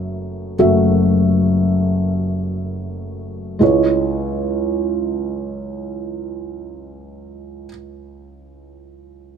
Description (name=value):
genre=folk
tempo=36-45 BPM (dotted quarters)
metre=6/8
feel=straight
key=C# minor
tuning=A4 = 441 Hz
part: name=felt-muted upright piano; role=solo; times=0.0-9.4 s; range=F#1 to E5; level=-17 LUFS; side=equal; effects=none
room=little or no reverb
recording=none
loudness=-16 LUFS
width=side -7 dB against mid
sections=0.0-3.6 A section; 3.6-6.9 B section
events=slowing down 0.0-3.6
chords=0.0 F#m7; 3.6 C#m